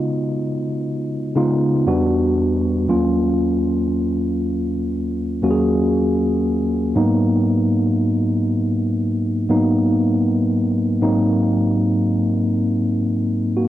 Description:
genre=R&B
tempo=59 BPM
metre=4/4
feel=swing 54% on 16ths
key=G# dorian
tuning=A4 = 441 Hz
part: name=mellow tine electric piano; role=solo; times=0.0-13.7 s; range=D#2 to D#5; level=-17 LUFS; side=equal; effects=medium stereo tremolo, cassette tape, analog delay
room=moderate studio reverb, RT60 0.5 s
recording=home recording on cassette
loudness=-17 LUFS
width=side -13 dB against mid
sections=0.0-13.7 A section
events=none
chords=0.0 C#9; 1.9 Em7; 2.9 D#m7; 7.0 G#m9; 11.0 G#7

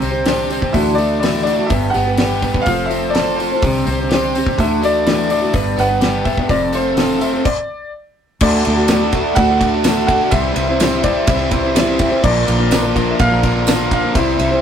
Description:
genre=folk rock and heartland rock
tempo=125 BPM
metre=4/4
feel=straight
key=unclear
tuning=A4 = 444 Hz
part: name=clear concert grand piano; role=melody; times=0.0-14.6 s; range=C5 to F#5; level=-20 LUFS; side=left 1 dB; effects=none
part: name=picked plugged-in steel-string acoustic guitar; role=accompaniment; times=0.0-14.6 s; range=G2 to D5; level=-20 LUFS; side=left 2 dB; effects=none
part: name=mellow tonewheel organ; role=sustained chords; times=0.0-14.6 s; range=D3 to C6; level=-26 LUFS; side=right 2 dB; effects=slow rotary speaker
part: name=biting overdriven guitar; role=riff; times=0.0-14.6 s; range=F2 to A4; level=-20 LUFS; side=right 2 dB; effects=none
part: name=fingered electric bass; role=bass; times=0.0-14.6 s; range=F1 to D2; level=-21 LUFS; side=equal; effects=none
part: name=damped 70s drum kit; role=drums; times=0.0-14.5 s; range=crash cymbal, hi-hat, kick drum, ride cymbal, snare drum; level=-19 LUFS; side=equal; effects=none
part: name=tambourine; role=percussion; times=8.9-13.8 s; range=none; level=-30 LUFS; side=right 6 dB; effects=none
room=moderate small room reverb, RT60 0.6 s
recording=rough rehearsal-room recording, tube saturation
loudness=-13 LUFS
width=side -8 dB against mid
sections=0.0-8.4 A section; 8.4-14.6 B section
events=stop 7.5-8.4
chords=0.0 Csus2; 0.7 Dadd9; 1.7 G; 2.7 F; 3.6 Csus2; 4.6 Dadd9; 5.5 G; 6.5 F; 7.5 N.C.; 8.4 D; 10.3 C; 12.2 Bb

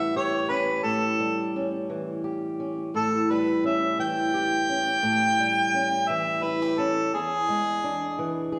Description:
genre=acoustic country blues, solo or duo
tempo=57 BPM (dotted quarters)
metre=12/8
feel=straight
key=unclear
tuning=A4 = 440 Hz
part: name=mellow harmonica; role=melody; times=0.0-8.5 s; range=G#4 to G5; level=-27 LUFS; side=equal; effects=none
part: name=fingerpicked old ladder-braced acoustic guitar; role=accompaniment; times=0.0-8.6 s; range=E2 to G#4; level=-29 LUFS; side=equal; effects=none
room=wet recital hall reverb, RT60 1.4 s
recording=recorded in a church or concert hall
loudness=-25 LUFS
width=mono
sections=0.0-8.6 A section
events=none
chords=0.0 A7; 7.1 E7

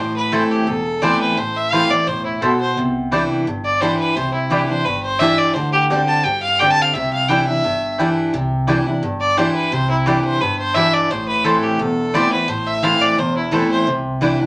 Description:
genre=bluegrass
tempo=173 BPM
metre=4/4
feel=straight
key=C major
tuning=A4 = 440 Hz
part: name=clear fiddle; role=melody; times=0.0-13.9 s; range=E4 to A5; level=-21 LUFS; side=equal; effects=none
part: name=picked steel-string acoustic guitar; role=accompaniment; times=0.0-14.5 s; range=E2 to G4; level=-22 LUFS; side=equal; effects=none
part: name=upright bass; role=bass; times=0.0-14.3 s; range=E1 to G2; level=-33 LUFS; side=equal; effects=none
part: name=mandolin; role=stabs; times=0.3-14.3 s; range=C4 to A5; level=-24 LUFS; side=equal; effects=none
room=wet small room reverb, RT60 0.5 s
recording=none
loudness=-18 LUFS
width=mono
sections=0.0-8.3 A section; 8.3-14.5 A section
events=none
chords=0.0 Am; 2.8 Cadd9; 5.6 Gsus4/D; 6.9 Cadd9; 11.1 Am; 13.9 Cadd9

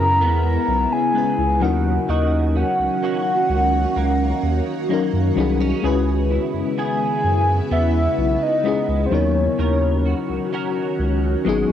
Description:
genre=R&B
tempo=64 BPM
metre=4/4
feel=straight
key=unclear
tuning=A4 = 440 Hz
part: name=warm velvety synth lead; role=melody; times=0.0-10.5 s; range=B#4 to A#5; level=-21 LUFS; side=equal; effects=chorus, tremolo, cassette tape, tape echo
part: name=FM electric piano with tremolo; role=accompaniment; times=0.0-11.7 s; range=F#3 to F#5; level=-25 LUFS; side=left 8 dB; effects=cassette tape
part: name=ethereal airy pad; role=sustained chords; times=0.0-11.7 s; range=C#3 to F#4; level=-25 LUFS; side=equal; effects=ensemble chorus, built-in reverb, phaser, cassette tape
part: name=direct-recorded clean electric guitar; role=arpeggios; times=0.0-11.7 s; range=C#3 to A#4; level=-30 LUFS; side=right 8 dB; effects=ensemble chorus, cassette tape, tape echo
part: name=saturated sub bass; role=bass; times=0.0-11.7 s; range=G#1 to F#2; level=-20 LUFS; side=equal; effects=none
room=light reverb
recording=home recording on cassette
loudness=-17 LUFS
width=side -10 dB against mid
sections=0.0-11.7 A section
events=none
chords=0.0 C#m7; 1.6 D#m7; 5.8 C#m7; 9.1 D#m7

